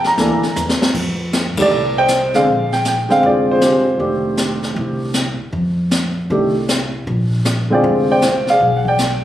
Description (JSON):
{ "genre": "jazz piano trio", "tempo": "157 BPM", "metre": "4/4", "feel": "swing 65% on 8ths", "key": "unclear", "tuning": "A4 = 440 Hz", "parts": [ { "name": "warm grand piano", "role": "melody", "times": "0.0-9.2 s", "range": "D3 to Bb5", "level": "-14 LUFS", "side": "equal", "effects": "plate reverb" }, { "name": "upright bass", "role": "bass", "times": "0.0-9.2 s", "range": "F1 to F2", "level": "-22 LUFS", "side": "equal", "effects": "none" }, { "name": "jazz brush drum kit", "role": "drums", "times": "0.0-9.2 s", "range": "brushed snare drum, crash cymbal, hi-hat, kick drum, ride cymbal, snare drum", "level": "-21 LUFS", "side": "left 1 dB", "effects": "none" } ], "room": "moderate large studio reverb, RT60 0.8 s", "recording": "recorded on a phone in the room, studio reverb, compression", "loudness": "-14 LUFS", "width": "side -12 dB against mid", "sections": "0.9-9.2 A section", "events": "drum fill 0.6-0.9; band accent 1.5", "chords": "0.0 C13 (rootless); 0.9 F13; 2.5 Bb13; 4.0 F13; 7.1 Bb13; 8.6 Bdim7" }